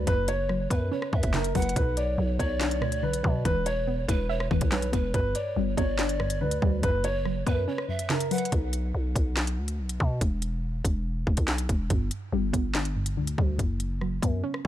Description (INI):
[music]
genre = hip hop, drill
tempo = 142 BPM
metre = 4/4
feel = half-time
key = B minor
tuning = A4 = 439 Hz
[part]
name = dark concert grand piano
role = melody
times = 0.0-8.5 s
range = A#4 to D5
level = -31 LUFS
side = equal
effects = low-pass filter, digital delay
[part]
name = breathy mellow polished pan flute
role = second line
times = 0.0-8.5 s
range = B4 to F#5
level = -36 LUFS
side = right 5 dB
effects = digital delay
[part]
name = soft round pluck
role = accompaniment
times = 0.0-8.5, 11.9-14.7 s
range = F#2 to E5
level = -31 LUFS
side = left 1 dB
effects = chorus, low-pass filter
[part]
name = growling 808-style bass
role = bass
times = 0.0-14.7 s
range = E1 to B2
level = -29 LUFS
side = equal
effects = none
[part]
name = drill drum kit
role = drums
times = 0.1-14.7 s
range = handclaps, hi-hat, kick drum, rim click, snare drum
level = -28 LUFS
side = equal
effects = none
[sound]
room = digital ambience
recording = none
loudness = -25 LUFS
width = side -12 dB against mid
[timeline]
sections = 0.0-8.5 A section; 8.5-14.7 B section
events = kick muted 7.7-8.5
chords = 0.1 F#sus4; 1.8 Bm; 3.5 Em; 5.1 G; 6.8 F#sus4; 8.5 Bm; 10.2 E5; 11.9 G; 13.6 F#sus4